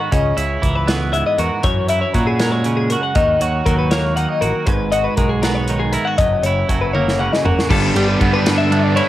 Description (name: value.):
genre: math rock and midwest emo.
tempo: 79 BPM (dotted quarters).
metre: 6/8.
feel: straight.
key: unclear.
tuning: A4 = 439 Hz.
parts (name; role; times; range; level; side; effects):
twelve-string electric guitar; accompaniment; 0.0-9.1 s; F#2 to F#4; -20 LUFS; right 5 dB; spring reverb, cassette tape.
twelve-string electric guitar; arpeggios; 0.0-9.1 s; G4 to F#5; -20 LUFS; left 5 dB; spring reverb, cassette tape.
growling picked electric bass; bass; 0.1-9.0 s; F#1 to A#2; -20 LUFS; equal; overdrive.
modern studio drum kit; drums; 0.1-9.1 s; crash cymbal, hi-hat, kick drum, ride cymbal, snare drum, toms; -21 LUFS; equal; cassette tape.
crunchy overdriven guitar; riff; 7.7-9.1 s; D3 to D4; -18 LUFS; equal; cassette tape.
room: light reverb.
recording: home recording on cassette.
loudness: -14 LUFS.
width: side -14 dB against mid.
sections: 0.0-7.7 A section; 7.7-9.1 B section.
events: drum fill 6.9-7.7.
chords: 0.1 C#m9; 1.6 F#9; 3.2 D#m7; 4.7 G#m9; 6.2 F#7; 7.7 Gadd9.